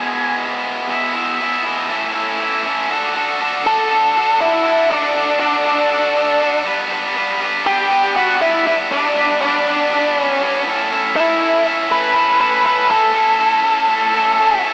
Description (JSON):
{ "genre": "rock", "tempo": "120 BPM", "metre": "4/4", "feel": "straight", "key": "unclear", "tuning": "A4 = 440 Hz", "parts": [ { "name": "octave-fuzz lead guitar", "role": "melody", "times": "0.0-0.4, 3.7-14.6 s", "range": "D4 to G#5", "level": "-15 LUFS", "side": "equal", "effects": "distortion, slapback echo" }, { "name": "tight distorted guitar", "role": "riff", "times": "0.0-14.7 s", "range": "E2 to B4", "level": "-16 LUFS", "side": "equal", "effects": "distortion, slapback echo" } ], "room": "wet lush hall reverb, RT60 2.2 s", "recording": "big arena sound, small speaker sound", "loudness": "-13 LUFS", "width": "side -24 dB against mid", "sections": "0.9-2.9 A section; 2.9-14.7 B section", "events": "none", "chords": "0.0 E; 1.9 A; 2.9 D; 6.7 G; 10.7 Aadd9" }